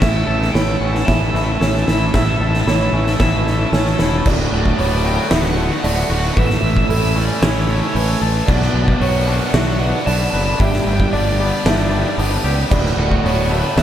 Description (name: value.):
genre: post-rock.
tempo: 114 BPM.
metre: 4/4.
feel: straight.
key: D major.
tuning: A4 = 440 Hz.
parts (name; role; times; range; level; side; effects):
overdriven semi-hollow guitar; melody; 0.0-13.8 s; C#5 to B5; -26 LUFS; right 1 dB; tape echo.
felt-muted upright piano; arpeggios; 0.0-13.8 s; A4 to E5; -26 LUFS; right 4 dB; tape echo.
twangy electric guitar; arpeggios; 0.0-13.8 s; D2 to B4; -24 LUFS; left 2 dB; lush chorus, tape echo.
distorted electric guitar; riff; 0.0-13.8 s; D2 to B4; -24 LUFS; right 1 dB; overdrive.
fuzz fingered electric bass; bass; 0.0-13.8 s; D1 to C#2; -19 LUFS; equal; overdrive.
oversized low-tuned drum kit; drums; 0.0-13.8 s; crash cymbal, hi-hat, kick drum, snare drum; -19 LUFS; equal; none.
room: moderate lush hall reverb, RT60 1.7 s, small room ambience.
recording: dreamy mix soaked in reverb.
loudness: -14 LUFS.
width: side -10 dB against mid.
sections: 0.0-4.3 A section; 4.3-13.8 B section.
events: build-up 0.0-4.3.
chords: 0.0 A; 4.3 D6; 6.4 Aadd9; 8.5 Bmadd9; 10.6 G; 12.7 D6.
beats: | 0.02 0.55 1.08 1.61 | 2.14 2.67 3.20 3.73 | 4.25 4.78 5.31 5.84 | 6.37 6.90 7.43 7.95 | 8.48 9.01 9.54 10.07 | 10.60 11.12 11.65 12.18 | 12.71 13.24 13.77.